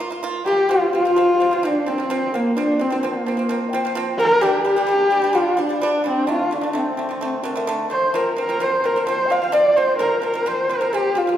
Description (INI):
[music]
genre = mongolian traditional, Mongolian folk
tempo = 129 BPM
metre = 4/4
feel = straight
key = F zhi mode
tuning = A4 = 442 Hz
[part]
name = warm horsehead fiddle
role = melody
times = 0.0-11.4 s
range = Bb3 to F5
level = -18 LUFS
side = equal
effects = none
[part]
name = pipa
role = arpeggios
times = 0.0-11.4 s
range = D3 to F4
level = -26 LUFS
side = right 2 dB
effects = none
[part]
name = low xiao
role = second line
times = 0.5-11.4 s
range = C4 to G5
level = -25 LUFS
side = left 2 dB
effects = none
[sound]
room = wet recital hall reverb, RT60 1.7 s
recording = recorded in a church or concert hall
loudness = -17 LUFS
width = side -11 dB against mid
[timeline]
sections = 0.7-11.4 A section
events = none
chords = 0.0 Bb5; 0.7 F5; 4.4 G5; 6.3 D5; 8.1 F5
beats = 0.22 | 0.69 1.16 1.62 2.09 | 2.56 3.02 3.49 3.95 | 4.42 4.88 5.35 5.82 | 6.28 6.75 7.21 7.68 | 8.14 8.61 9.07 9.54 | 10.00 10.46 10.93